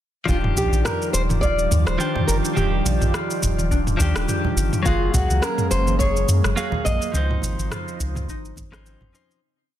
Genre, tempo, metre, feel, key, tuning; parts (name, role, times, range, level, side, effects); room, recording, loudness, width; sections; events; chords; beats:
sunset chillout; 105 BPM; 4/4; swing 56% on 16ths; Eb major; A4 = 440 Hz
nylon-string guitar; melody; 0.3-8.8 s; F4 to Eb5; -26 LUFS; equal; digital delay
direct-recorded clean electric guitar; accompaniment; 0.3-9.4 s; Eb3 to F5; -28 LUFS; moving between left 4 dB and right 5 dB; auto-pan, digital delay
airy breathy pad; sustained chords; 0.7-9.4 s; Db3 to D5; -30 LUFS; equal; chorus, phaser
concert harp; arpeggios; 0.3-9.8 s; C4 to Ab4; -32 LUFS; left 4 dB; digital delay
round analog bass; bass; 0.3-9.1 s; Eb1 to Gb2; -22 LUFS; equal
deep house drum kit; drums; 0.3-9.4 s; rim click, shaker, toms; -27 LUFS; right 1 dB; studio ambience, soft clipping on snare
electronic kick drum; drums; 0.3-8.7 s; -24 LUFS; equal; studio ambience
congas; percussion; 0.3-9.1 s; -31 LUFS; right 1 dB
light reverb; dense, heavily limited modern master; -19 LUFS; side -12 dB against mid
0.3-9.4 groove
fade-out 6.4-9.4
0.3 Ebmaj9; 4.9 Gbmaj9; 7.1 Dbmaj9
| 0.28 0.85 1.43 2.00 | 2.57 3.14 3.71 4.28 | 4.85 5.43 6.00 6.57 | 7.14 7.71 8.28 8.85